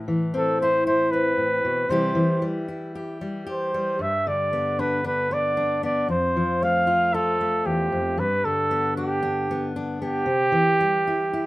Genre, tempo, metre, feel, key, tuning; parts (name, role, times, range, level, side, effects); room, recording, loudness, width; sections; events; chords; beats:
acoustic folk duo or small band; 115 BPM; 4/4; straight; G mixolydian; A4 = 440 Hz
fingerpicked steel-string acoustic guitar; accompaniment; 0.0-11.5 s; E2 to G4; -26 LUFS; left 1 dB
clear flugelhorn; melody; 0.4-11.5 s; G4 to F5; -22 LUFS; right 1 dB
moderate studio reverb, RT60 0.6 s; rough home demo mix; -21 LUFS; side -18 dB against mid
0.0-11.5 A section
0.0 Am; 1.9 C; 4.0 G; 6.1 F; 8.2 G; 10.3 C
0.36 0.88 1.40 | 1.92 2.44 2.96 3.49 | 4.01 4.53 5.05 5.57 | 6.10 6.62 7.14 7.66 | 8.19 8.71 9.23 9.75 | 10.28 10.80 11.32